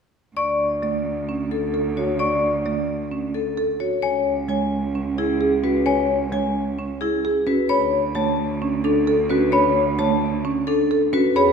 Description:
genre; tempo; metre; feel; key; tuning
classical, minimalist pattern music; 131 BPM; 4/4; straight; B dorian; A4 = 440 Hz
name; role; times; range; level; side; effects
vibraphone with hard mallets; melody; 0.4-11.5 s; G#4 to A5; -24 LUFS; left 7 dB; none
worn celesta; arpeggios; 0.4-11.5 s; G#5 to C#6; -25 LUFS; right 1 dB; none
rich cello; bass; 0.4-11.5 s; C#2 to E2; -26 LUFS; right 3 dB; none
folk marimba with soft mallets; accompaniment; 0.8-11.4 s; G#3 to C#4; -27 LUFS; equal; none
marimba with medium mallets; arpeggios; 0.8-11.5 s; C#4 to D5; -24 LUFS; right 4 dB; none
room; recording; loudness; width
moderate scoring stage reverb, RT60 2.0 s; recorded in a church or concert hall; -19 LUFS; side -6 dB against mid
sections
0.4-11.5 A section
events
none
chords
0.4 D; 4.0 C#m; 7.7 Bm7/D

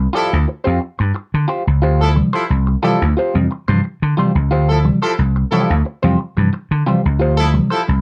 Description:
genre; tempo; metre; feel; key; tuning
funk; 89 BPM; 4/4; straight; D minor; A4 = 443 Hz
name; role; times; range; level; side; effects
vintage slap bass; bass; 0.0-8.0 s; C2 to D3; -18 LUFS; equal; none
electric guitar at the edge of break-up; accompaniment; 0.1-7.9 s; F4 to D5; -23 LUFS; equal; wah
warm horn section; second line; 0.2-7.8 s; F3 to A4; -21 LUFS; equal; slapback echo
bell-like tine electric piano; stabs; 2.0-7.9 s; C3 to G3; -20 LUFS; equal; none
room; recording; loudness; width
little or no reverb; dark, warm production; -16 LUFS; mono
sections
0.0-8.0 A section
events
none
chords
0.0 Dm11

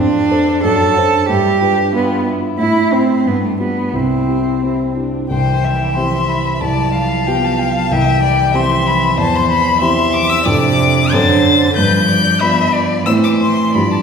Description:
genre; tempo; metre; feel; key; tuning
quick classical-period movement for piano quartet; 86-96 BPM; 2/4; rubato; C major; A4 = 440 Hz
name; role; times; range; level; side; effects
warm violin; melody; 0.0-14.0 s; D4 to A6; -18 LUFS; left 5 dB; none
rich cello; second line; 0.0-14.0 s; C3 to A4; -17 LUFS; right 2 dB; none
warm grand piano; accompaniment; 0.0-14.0 s; C2 to D5; -16 LUFS; right 1 dB; none
rich violin; second line; 5.3-14.0 s; B4 to F5; -21 LUFS; left 3 dB; none
room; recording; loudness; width
wet recital hall reverb, RT60 1.6 s; heard from further back in the room; -12 LUFS; side -6 dB against mid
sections
0.0-5.3 A section; 5.3-14.0 B section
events
none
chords
0.0 Dm7/F; 0.6 D7/F#; 1.3 G7; 2.6 Am; 3.3 G7; 3.9 C; 6.6 G7/C; 7.9 C; 9.2 C/E; 10.4 Dm7/F; 11.1 D7/F#; 11.8 G7; 13.1 Am

